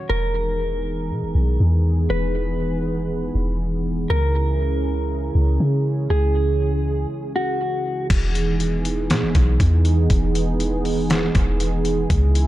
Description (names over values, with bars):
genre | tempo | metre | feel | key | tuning
hip hop, atmospheric cloud-rap | 120 BPM | 4/4 | half-time | E lydian | A4 = 440 Hz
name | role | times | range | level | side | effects
dark analog pad | sustained chords | 0.0-12.5 s | C#3 to G#4 | -24 LUFS | right 1 dB | chorus, sidechain pumping
mellow electric guitar | melody | 0.1-8.1 s | F#4 to B4 | -26 LUFS | equal | wide subtle chorus, low-pass filter, tape echo
soft 808-style bass | bass | 0.1-12.5 s | E1 to C#3 | -20 LUFS | equal | none
trip hop sampler-style drum kit | drums | 8.1-12.5 s | crash cymbal, hi-hat, kick drum, snare drum | -22 LUFS | equal | tape echo
room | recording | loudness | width
digital ambience | echo-heavy mix | -18 LUFS | side -15 dB against mid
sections
0.1-8.1 A section; 8.1-12.5 B section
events
break 7.1-8.1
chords
0.1 Emaj7; 4.1 C#m; 8.1 Emaj7